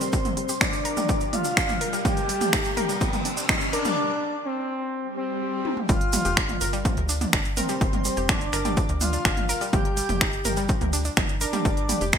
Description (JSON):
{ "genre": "melodic techno", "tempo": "125 BPM", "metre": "4/4", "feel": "straight", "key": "unclear", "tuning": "A4 = 442 Hz", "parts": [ { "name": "expressive portamento lead", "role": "melody", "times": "0.0-12.2 s", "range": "C4 to G4", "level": "-30 LUFS", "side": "left 1 dB", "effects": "chorus, sidechain pumping, digital delay" }, { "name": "airy dreamy lead", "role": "second line", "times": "0.0-12.2 s", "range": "C5 to G5", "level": "-33 LUFS", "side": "left 1 dB", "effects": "chorus, sidechain pumping, digital delay" }, { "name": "wide unison pluck", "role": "arpeggios", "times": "0.0-12.2 s", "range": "F3 to Bb4", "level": "-31 LUFS", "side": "equal", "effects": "vintage 12-bit sampler grit, sidechain pumping, digital delay" }, { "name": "techno drum kit", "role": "drums", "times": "0.0-12.2 s", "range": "finger snaps, hi-hat, toms", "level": "-26 LUFS", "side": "right 1 dB", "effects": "sidechain pumping on hats, sidechain pumping on toms, gated reverb" }, { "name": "tube shaker", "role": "percussion", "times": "0.0-12.2 s", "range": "none", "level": "-34 LUFS", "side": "right 3 dB", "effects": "none" }, { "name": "riser and swell", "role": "sound effects", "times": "0.1-5.9 s", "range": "none", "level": "-34 LUFS", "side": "left 1 dB", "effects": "none" }, { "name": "electronic kick drum", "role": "drums", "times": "0.1-12.2 s", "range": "none", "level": "-26 LUFS", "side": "equal", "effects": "none" }, { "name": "tight sequencer bass", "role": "bass", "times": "5.9-12.2 s", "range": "F1 to D2", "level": "-30 LUFS", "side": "equal", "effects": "sidechain pumping" } ], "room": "moderate lush hall reverb, RT60 2.2 s", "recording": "bright 1980s-style digital production", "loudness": "-22 LUFS", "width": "side -8 dB against mid", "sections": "0.0-5.9 A section; 5.9-12.2 B section", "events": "build-up 0.0-5.9; filter sweep on analog synth lead 0.0-5.9; filter sweep on digital synth lead 0.0-5.9; riser 0.1-4.0; break 4.0-5.9; swell 5.1-5.9; drum fill 5.7; drop 5.9-12.2", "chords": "0.0 G7(no3); 2.1 Eb/G; 4.0 N.C.; 5.9 G7(no3); 9.7 N.C." }